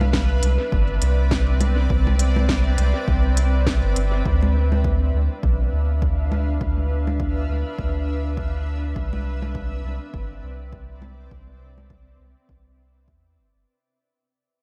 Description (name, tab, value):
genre	ambient dub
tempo	102 BPM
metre	4/4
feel	swing 58% on 16ths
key	unclear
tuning	A4 = 436 Hz
part	granular cloud pad	sustained chords	0.0-13.7 s	C4 to F5	-32 LUFS	equal	built-in reverb
part	soft dub sub bass	bass	0.0-13.7 s	G1 to E2	-23 LUFS	equal	none
part	organic electronic drum kit	drums	0.0-11.9 s	congas, hi-hat, snare drum	-31 LUFS	equal	studio reverb, dub echo
part	backwards swelling texture	texture	0.0-4.3 s	B4	-42 LUFS	equal	none
part	electronic kick drum	drums	0.1-13.2 s	none	-28 LUFS	equal	studio reverb
room	digital ambience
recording	none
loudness	-21 LUFS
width	mono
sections	0.0-4.3 A section; 4.3-13.7 B section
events	fade-out 4.3-13.7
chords	0.0 Cmaj9; 4.3 Dm69; 9.0 Cmaj9